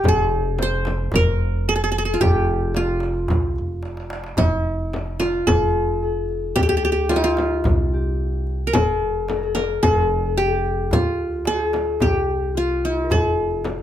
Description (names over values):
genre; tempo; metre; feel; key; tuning
Arabic maqam ensemble; 110 BPM; 4/4; straight; F maqam rast; A4 = 440 Hz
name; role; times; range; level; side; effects
qanun; melody; 0.0-13.8 s; E4-50c to C5; -22 LUFS; right 2 dB; none
concert harp; second line; 0.0-13.8 s; E4-50c to C5; -27 LUFS; left 9 dB; none
upright bass; bass; 0.0-13.8 s; F1 to D2; -24 LUFS; equal; none
darbuka; percussion; 0.0-13.8 s; none; -26 LUFS; equal; none
frame drum; percussion; 0.1-13.8 s; none; -24 LUFS; left 1 dB; none
room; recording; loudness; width
little or no reverb; close, detailed microphones; -18 LUFS; side -11 dB against mid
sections
0.0-4.4 A section; 4.4-13.8 B section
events
drum fill 3.8-4.4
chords
none